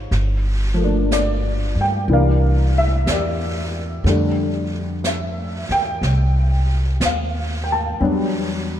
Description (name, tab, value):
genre	jazz ballad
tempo	61 BPM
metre	4/4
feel	swing 67% on 8ths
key	unclear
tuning	A4 = 442 Hz
part	dark baby grand piano	accompaniment	0.0-8.8 s	D3 to A5	-21 LUFS	left 1 dB	analog chorus
part	upright bass	bass	0.0-8.8 s	G1 to G2	-20 LUFS	equal	none
part	jazz brush drum kit	drums	0.1-8.8 s	brushed snare drum, hi-hat, snare drum	-28 LUFS	right 1 dB	none
room	moderate plate reverb, RT60 2.3 s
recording	dreamy mix soaked in reverb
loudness	-17 LUFS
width	side -10 dB against mid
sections	0.0-8.8 A section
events	none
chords	0.1 Gm7; 2.1 C9; 4.1 Fmaj13; 8.0 Em9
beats	| 0.13 1.11 2.10 3.08 | 4.06 5.04 6.02 7.01 | 8.00